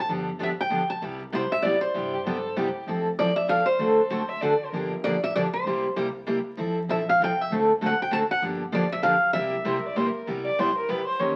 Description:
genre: acoustic string swing (jazz manouche)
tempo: 194 BPM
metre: 3/4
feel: swing 59% on 8ths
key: F major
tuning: A4 = 440 Hz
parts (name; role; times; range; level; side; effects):
- picked steel-string acoustic guitar; melody; 0.0-9.9 s; C5 to A5; -27 LUFS; equal; none
- picked steel-string acoustic guitar; accompaniment; 0.1-11.4 s; C3 to Bb4; -29 LUFS; equal; none
- upright bass; bass; 0.1-11.4 s; F1 to G2; -42 LUFS; equal; none
- rich violin; second line; 2.1-4.9, 9.7-11.4 s; G4 to E5; -31 LUFS; equal; none
room: wet studio reverb, RT60 0.8 s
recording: very old 78 rpm record, vinyl crackle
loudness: -25 LUFS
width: mono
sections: 0.0-2.9 A section; 2.9-10.3 B section; 10.3-11.4 C section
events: violin solo 10.3-11.4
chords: 0.1 G7; 1.0 Cmaj7; 2.9 Fmaj7; 3.8 D7; 4.7 Gm7; 5.7 C7; 6.6 Fmaj7; 7.5 D7; 8.4 Gm7; 9.4 C7; 10.3 Cmaj7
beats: | 0.09 0.40 0.71 | 1.02 1.32 1.63 | 1.94 2.25 2.56 | 2.87 3.18 3.49 | 3.80 4.11 4.42 | 4.72 5.03 5.34 | 5.65 5.96 6.27 | 6.58 6.89 7.20 | 7.50 7.81 8.12 | 8.43 8.74 9.04 | 9.35 9.66 9.97 | 10.28 10.59 10.89 | 11.20

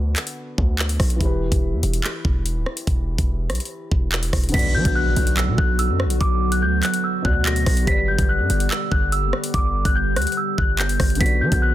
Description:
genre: hip hop, drill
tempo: 144 BPM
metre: 4/4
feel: half-time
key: B minor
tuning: A4 = 440 Hz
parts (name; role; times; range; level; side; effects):
- dark concert grand piano; accompaniment; 0.0-11.7 s; B2 to D5; -30 LUFS; left 2 dB; low-pass filter
- hard-hitting 808-style bass; bass; 0.0-11.7 s; D1 to F#3; -22 LUFS; equal; none
- drill drum kit; drums; 0.2-11.6 s; crash cymbal, handclaps, hi-hat, kick drum, rim click; -22 LUFS; equal; none
- celesta; melody; 4.5-11.7 s; D6 to B6; -24 LUFS; equal; low-pass filter, digital delay
- warbly tape-like pad; sustained chords; 4.5-11.7 s; D3 to G4; -27 LUFS; right 1 dB; chorus, built-in reverb
- impact; sound effects; 4.5-6.2 s; none; -31 LUFS; equal; none
room: little or no reverb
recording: dense, heavily limited modern master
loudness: -18 LUFS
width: side -13 dB against mid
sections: 0.0-4.5 A section; 4.5-11.7 B section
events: break 0.0-4.5; impact 4.5-6.2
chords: 0.0 Bm; 1.2 Em; 4.5 Bm; 7.9 G; 11.2 Bm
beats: 0.37 0.79 | 1.21 1.62 2.04 2.46 | 2.87 3.29 3.71 4.12 | 4.54 4.96 5.37 5.79 | 6.21 6.62 7.04 7.46 | 7.87 8.29 8.71 9.12 | 9.54 9.96 10.37 10.79 | 11.21 11.62

